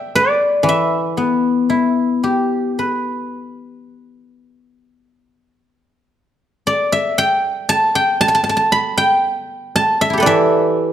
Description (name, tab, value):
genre	chinese traditional, Chinese solo plucked strings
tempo	49-59 BPM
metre	4/4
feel	rubato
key	E yu mode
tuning	A4 = 440 Hz
part	guzheng	solo	0.0-10.9 s	E3 to B5	-14 LUFS	equal	none
room	light reverb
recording	dark, warm production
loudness	-14 LUFS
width	side -10 dB against mid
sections	0.0-5.1 A section; 5.1-10.9 B section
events	none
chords	none